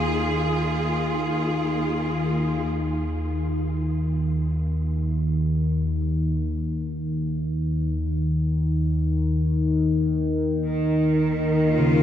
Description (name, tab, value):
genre	dark ambient drone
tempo	free time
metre	none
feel	none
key	unclear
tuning	A4 = 440 Hz
part	bright studio cello section	sustained chords	0.0-2.7, 10.7-12.0 s	Eb3 to Ab4	-27 LUFS	equal	none
part	gamelan-type bossed gongs	arpeggios	0.0-12.0 s	Db3 to Eb4	-30 LUFS	right 2 dB	none
part	analog drone	drone	0.0-12.0 s	Eb2 to Eb3	-22 LUFS	equal	chorus
room	wet huge ambient reverb, RT60 7.4 s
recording	none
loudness	-22 LUFS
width	side -10 dB against mid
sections	0.0-2.7 A section; 2.7-12.0 B section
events	none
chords	0.0 Ebsus2; 2.7 N.C.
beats	free time